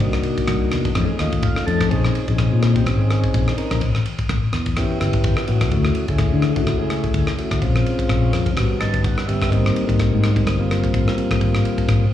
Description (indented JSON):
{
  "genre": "electric jazz fusion",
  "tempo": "126 BPM",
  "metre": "4/4",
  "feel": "swing 56% on 16ths",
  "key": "unclear",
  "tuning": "A4 = 440 Hz",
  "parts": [
    { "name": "mellow tonewheel organ", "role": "accompaniment", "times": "0.0-12.1 s", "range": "G3 to A5", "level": "-23 LUFS", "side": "left 1 dB", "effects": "slow rotary speaker, slapback echo" },
    { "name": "mellow fretless electric bass", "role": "bass", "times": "0.0-12.1 s", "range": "G1 to D3", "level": "-19 LUFS", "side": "left 1 dB", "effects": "lush chorus" },
    { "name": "damped 70s drum kit", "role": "drums", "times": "0.0-12.0 s", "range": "kick drum, ride cymbal, rim click", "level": "-23 LUFS", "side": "equal", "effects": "none" }
  ],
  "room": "small room ambience",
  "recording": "live gig heard through the venue's PA, club reverb, studio ambience",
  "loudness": "-17 LUFS",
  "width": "side -11 dB against mid",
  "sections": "0.0-12.1 A section",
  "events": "tonewheel organ fill 1.0-1.9, 8.6-9.5",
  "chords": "0.0 Cm7b5; 1.0 F7alt; 1.9 Bbm11; 3.8 A9; 5.7 Dmaj7; 7.6 Bbm7; 8.6 A13; 9.5 Abmaj7",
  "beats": "| 0.01 0.49 0.97 1.44 | 1.92 2.39 2.87 3.34 | 3.82 4.29 4.77 5.25 | 5.72 6.20 6.67 7.15 | 7.62 8.10 8.57 9.04 | 9.52 9.99 10.47 10.95 | 11.42 11.89"
}